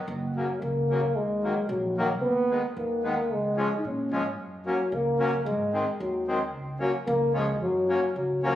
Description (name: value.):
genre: alpine folk, alpine dance band.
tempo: 112 BPM.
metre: 2/4.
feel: straight.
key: F# major.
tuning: A4 = 440 Hz.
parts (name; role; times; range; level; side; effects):
upright bass; bass; 0.1-8.5 s; F#1 to A#2; -33 LUFS; right 1 dB; none.
warm euphonium; melody; 0.4-8.6 s; E#3 to D#4; -26 LUFS; equal; none.
accordion; accompaniment; 0.4-8.6 s; C#3 to C#4; -30 LUFS; left 2 dB; none.
room: moderate recital hall reverb, RT60 1.6 s.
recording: recorded on a phone in the room, club reverb, compression.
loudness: -24 LUFS.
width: side -12 dB against mid.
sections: 0.1-8.6 A section.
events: none.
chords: 0.1 F#; 1.1 D#m; 2.2 G#m/D#; 3.3 C#; 4.4 F#; 5.5 G#; 6.5 F#/C#; 7.1 C#; 7.6 F#.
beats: | 0.07 0.61 | 1.15 1.68 | 2.22 2.75 | 3.29 3.83 | 4.37 4.92 | 5.46 5.99 | 6.53 7.06 | 7.60 8.14.